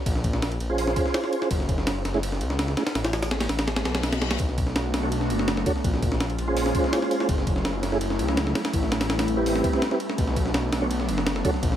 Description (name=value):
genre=drum and bass, jungle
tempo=166 BPM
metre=4/4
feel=straight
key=B dorian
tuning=A4 = 440 Hz
part: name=detuned saw bass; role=bass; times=0.1-11.8 s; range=F#1 to C#2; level=-28 LUFS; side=equal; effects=none
part: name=breakbeat sampler-style drum kit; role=drums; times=0.1-11.8 s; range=hi-hat, kick drum, ride cymbal, snare drum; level=-26 LUFS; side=equal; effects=none
part: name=mellow tonewheel organ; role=stabs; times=0.7-2.8, 5.0-11.5 s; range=A3 to C#5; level=-28 LUFS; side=right 2 dB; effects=chorus vibrato, fast rotary speaker, dub echo
part: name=reverse cymbal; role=sound effects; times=3.9-4.4 s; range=none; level=-36 LUFS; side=left 8 dB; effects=none
part: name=airy breathy pad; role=sustained chords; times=4.6-11.8 s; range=E#3 to F#4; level=-29 LUFS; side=equal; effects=chorus
room=light reverb, digital ambience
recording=none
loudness=-22 LUFS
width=side -10 dB against mid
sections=0.0-11.8 A section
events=reverse cymbal 3.9-4.4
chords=0.1 A#m7; 1.5 F#5; 3.0 Asus2; 4.4 Bm7; 5.8 A#m7; 7.3 F#m7; 8.7 Am7; 10.2 Bm7